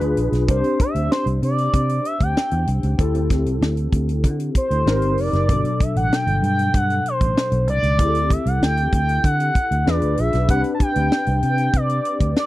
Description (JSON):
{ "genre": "polished 1980s jazz-funk pop", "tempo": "96 BPM", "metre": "4/4", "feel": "straight", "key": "unclear", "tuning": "A4 = 441 Hz", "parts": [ { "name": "barky tine electric piano", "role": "accompaniment", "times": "0.0-12.5 s", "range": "B2 to C5", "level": "-24 LUFS", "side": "left 2 dB", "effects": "overdrive, ensemble chorus" }, { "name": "vintage muted fingered electric bass", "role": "bass", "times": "0.0-12.3 s", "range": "F1 to D3", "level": "-21 LUFS", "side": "equal", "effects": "none" }, { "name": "tight funk drum kit", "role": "drums", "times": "0.0-12.5 s", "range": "hi-hat, kick drum, snare drum", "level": "-20 LUFS", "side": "equal", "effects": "none" }, { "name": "expressive synth lead", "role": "melody", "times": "0.5-12.5 s", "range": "C5 to A5", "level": "-22 LUFS", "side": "equal", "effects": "chorus" } ], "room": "little or no reverb", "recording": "dry, close 1970s-style studio recording", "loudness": "-17 LUFS", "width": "side -16 dB against mid", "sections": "0.0-12.5 A section", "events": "none", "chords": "0.5 Cadd9; 3.0 D7sus4; 4.9 Abmaj9; 5.5 Gmaj9; 8.0 D7sus4; 9.9 E7b9; 10.5 Cmaj7sus2", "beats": "| 0.48 1.11 1.74 2.36 | 2.99 3.61 4.24 4.87 | 5.49 6.12 6.74 7.37 | 7.99 8.62 9.24 9.87 | 10.49 11.12 11.74 12.37" }